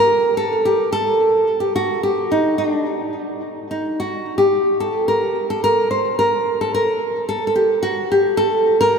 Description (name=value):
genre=klezmer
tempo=110 BPM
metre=4/4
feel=straight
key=unclear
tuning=A4 = 441 Hz
part: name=nylon-string guitar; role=solo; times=0.0-9.0 s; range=D4 to C5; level=-16 LUFS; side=equal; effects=tape echo
room=wet cathedral reverb, RT60 5.4 s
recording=in a vast, echoing space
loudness=-16 LUFS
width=side -6 dB against mid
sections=0.0-4.0 A section; 4.0-9.0 B section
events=none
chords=none